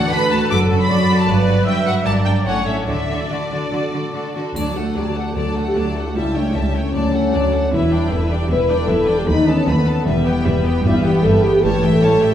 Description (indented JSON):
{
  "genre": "classical, dramatic, fast romantic movement for symphony orchestra",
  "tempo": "152 BPM",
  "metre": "4/4",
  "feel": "rubato",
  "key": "D major",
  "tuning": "A4 = 441 Hz",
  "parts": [
    { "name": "rich symphonic violin section", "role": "melody", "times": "0.0-12.3 s", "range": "D5 to D6", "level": "-26 LUFS", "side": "left 1 dB", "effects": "none" },
    { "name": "bright symphonic violin section", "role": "second line", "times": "0.0-12.3 s", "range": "C#4 to E5", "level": "-28 LUFS", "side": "left 2 dB", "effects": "none" },
    { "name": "rich symphonic viola section", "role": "accompaniment", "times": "0.0-12.3 s", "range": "F#3 to E5", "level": "-25 LUFS", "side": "right 2 dB", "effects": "none" },
    { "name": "concert harp", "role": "arpeggios", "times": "0.0-12.3 s", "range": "F#2 to D5", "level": "-22 LUFS", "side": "left 2 dB", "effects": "none" },
    { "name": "rich symphonic cello section", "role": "bass", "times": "0.1-12.3 s", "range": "C#2 to D3", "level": "-23 LUFS", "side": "right 2 dB", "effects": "none" },
    { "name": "rich chamber double bass section", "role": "bass", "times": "0.5-12.3 s", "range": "E1 to D#2", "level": "-23 LUFS", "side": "right 1 dB", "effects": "none" },
    { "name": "dark French horn section", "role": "sustained chords", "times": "4.6-12.3 s", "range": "B3 to B4", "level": "-18 LUFS", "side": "left 1 dB", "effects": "none" },
    { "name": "triangle", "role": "percussion", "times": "4.6-5.3 s", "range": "none", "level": "-40 LUFS", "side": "left 2 dB", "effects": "none" }
  ],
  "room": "wet recital hall reverb, RT60 1.4 s",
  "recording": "heard from further back in the room",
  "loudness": "-15 LUFS",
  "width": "side -10 dB against mid",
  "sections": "0.0-4.6 A section; 4.6-12.3 A section",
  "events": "none",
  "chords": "0.0 D; 0.5 D/F#; 1.3 Gmaj7; 2.1 Gm; 2.5 A; 2.9 D; 6.2 A7/C#; 6.9 D; 7.7 Em7; 9.3 B7/D#; 10.1 Em; 10.8 Em/G; 11.6 A7",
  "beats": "0.12 0.50 0.89 | 1.28 1.67 2.06 2.46 | 2.88 3.30 3.72 4.14 | 4.56 4.96 5.36 5.76 | 6.16 6.55 6.94 7.33 | 7.73 8.12 8.51 8.89 | 9.28 9.68 10.06 10.45 | 10.85 11.24 11.63 12.03"
}